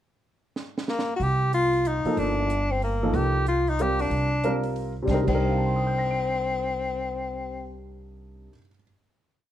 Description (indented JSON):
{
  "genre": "modal jazz",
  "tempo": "186 BPM",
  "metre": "3/4",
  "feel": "swing 62% on 8ths",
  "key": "C dorian",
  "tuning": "A4 = 439 Hz",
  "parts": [
    { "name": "compact cocktail drum kit", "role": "drums", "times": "0.6-5.3 s", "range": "crash cymbal, hi-hat, kick drum, snare drum", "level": "-34 LUFS", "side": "right 3 dB", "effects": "none" },
    { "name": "warm tenor saxophone", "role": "melody", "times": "0.9-7.8 s", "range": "Bb3 to G4", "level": "-26 LUFS", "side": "left 2 dB", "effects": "plate reverb" },
    { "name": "upright bass", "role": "bass", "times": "1.2-8.5 s", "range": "G1 to C2", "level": "-28 LUFS", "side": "right 1 dB", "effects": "none" },
    { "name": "warm baby grand piano", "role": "accompaniment", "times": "2.1-8.8 s", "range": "C3 to D7", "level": "-28 LUFS", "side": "equal", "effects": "none" }
  ],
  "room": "moderate studio reverb, RT60 0.8 s",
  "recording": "none",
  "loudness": "-23 LUFS",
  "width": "side -11 dB against mid",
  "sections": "0.2-1.2 pickup bar; 1.2-5.1 A section; 5.1-7.0 final chord",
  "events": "drum fill 0.6-1.2",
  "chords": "0.2 N.C.; 1.2 Cm9"
}